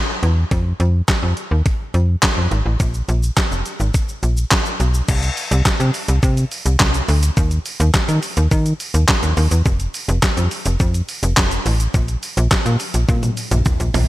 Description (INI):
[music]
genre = dance-pop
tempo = 105 BPM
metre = 4/4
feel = straight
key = unclear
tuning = A4 = 440 Hz
[part]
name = slap-like FM bass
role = bass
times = 0.2-14.1 s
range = F1 to Eb3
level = -16 LUFS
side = equal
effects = sidechain pumping
[part]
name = detuned 8-bit digital drum machine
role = drums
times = 0.2-14.1 s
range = crash cymbal, handclaps, hi-hat, kick drum, shaker, snare drum, toms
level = -18 LUFS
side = equal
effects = none
[sound]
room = light reverb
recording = none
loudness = -15 LUFS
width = side -16 dB against mid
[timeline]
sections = 0.0-5.1 A section; 5.1-14.1 B section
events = drum fill 13.1-14.1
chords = none